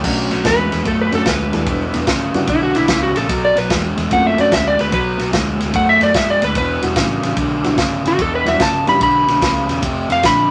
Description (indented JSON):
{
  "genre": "electric blues shuffle",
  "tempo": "147 BPM",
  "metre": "4/4",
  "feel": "swing 67% on 8ths",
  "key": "B minor",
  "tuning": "A4 = 439 Hz",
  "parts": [
    { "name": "barky reed electric piano", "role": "accompaniment", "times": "0.0-9.0 s", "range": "G3 to A4", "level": "-25 LUFS", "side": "equal", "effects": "overdrive, fast tremolo" },
    { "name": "raw garage guitar", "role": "riff", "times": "0.0-10.5 s", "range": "E2 to A3", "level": "-22 LUFS", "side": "equal", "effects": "overdrive" },
    { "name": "vintage muted fingered electric bass", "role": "bass", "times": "0.0-10.5 s", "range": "E1 to F#2", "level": "-28 LUFS", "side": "equal", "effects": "none" },
    { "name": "vintage drum kit", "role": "drums", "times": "0.0-10.4 s", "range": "crash cymbal, kick drum, ride cymbal, snare drum", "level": "-23 LUFS", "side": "equal", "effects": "none" },
    { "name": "electric slide guitar", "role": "melody", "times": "0.5-10.5 s", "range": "E4 to B5", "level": "-18 LUFS", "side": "equal", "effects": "none" }
  ],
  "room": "moderate studio reverb, RT60 0.8 s",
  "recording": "none",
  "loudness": "-16 LUFS",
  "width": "mono",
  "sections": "0.0-10.5 A section",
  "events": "electric slide guitar solo 0.0-10.5",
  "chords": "0.0 Bm9; 1.7 Em7; 3.3 Bm9; 6.6 Em9; 9.8 Fdim7(no3)"
}